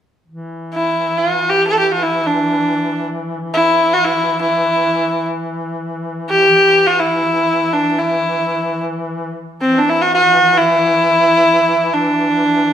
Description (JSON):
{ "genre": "persian", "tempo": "free time", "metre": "none", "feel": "none", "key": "unclear", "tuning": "A4 = 441 Hz", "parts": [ { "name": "warm duduk", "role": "drone", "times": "0.3-12.7 s", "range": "E3", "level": "-24 LUFS", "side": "left 1 dB", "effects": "none" }, { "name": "bright kamancheh", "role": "melody", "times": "0.7-12.7 s", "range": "C4 to A4", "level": "-12 LUFS", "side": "equal", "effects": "none" } ], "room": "moderate recital hall reverb, RT60 1.5 s", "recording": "minimal, uncompressed stereo recording", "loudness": "-12 LUFS", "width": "side -9 dB against mid", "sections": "0.3-12.7 A section", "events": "none", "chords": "none", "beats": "free time" }